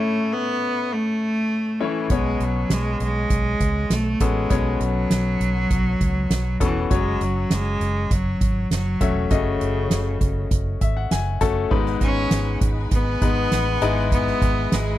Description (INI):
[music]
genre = piano-driven pop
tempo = 100 BPM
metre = 4/4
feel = straight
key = unclear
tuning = A4 = 440 Hz
[part]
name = bright cello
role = melody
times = 0.0-15.0 s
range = C#3 to C#4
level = -24 LUFS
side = equal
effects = slapback echo
[part]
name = bright concert grand piano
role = accompaniment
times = 0.0-15.0 s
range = G#2 to A5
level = -26 LUFS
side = left 6 dB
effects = none
[part]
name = vintage muted fingered electric bass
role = bass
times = 2.1-15.0 s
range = E1 to C#2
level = -24 LUFS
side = right 1 dB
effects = none
[part]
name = soft-mallet drum kit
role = drums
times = 2.1-14.9 s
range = crash cymbal, hi-hat, kick drum, snare drum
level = -23 LUFS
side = right 1 dB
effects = none
[part]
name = clear studio string section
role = sustained chords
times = 11.7-15.0 s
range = E3 to B5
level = -36 LUFS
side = equal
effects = none
[sound]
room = little or no reverb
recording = dry, close 1970s-style studio recording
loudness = -19 LUFS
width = side -14 dB against mid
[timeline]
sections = 0.0-11.7 A section; 11.7-15.0 B section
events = grand piano fill 10.5-11.7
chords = 0.0 A; 2.1 Bsus2; 6.9 F#m; 11.7 G#m; 13.8 Emaj7/G#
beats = 0.30 0.90 1.50 | 2.10 2.70 3.31 3.91 | 4.51 5.11 5.71 6.31 | 6.91 7.51 8.11 8.71 | 9.31 9.91 10.51 11.11 | 11.71 12.32 12.92 13.52 | 14.12 14.72